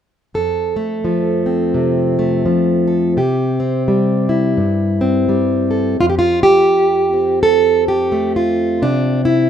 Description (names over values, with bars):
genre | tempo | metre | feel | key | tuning
folk, solo fingerstyle acoustic guitar | 85 BPM | 4/4 | swing 59% on 8ths | F major | A4 = 438 Hz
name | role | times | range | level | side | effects
fingerpicked plugged-in steel-string acoustic guitar | solo | 0.3-9.5 s | F2 to A4 | -13 LUFS | equal | none
room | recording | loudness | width
light reverb, small room reverb | rough home demo mix | -13 LUFS | side -9 dB against mid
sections
0.3-6.0 A section; 6.0-9.5 B section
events
none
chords
0.3 F; 3.2 C; 6.0 F; 8.8 C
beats
| 0.34 1.04 1.75 2.46 | 3.17 3.88 4.58 5.29 | 6.00 6.70 7.41 8.11 | 8.82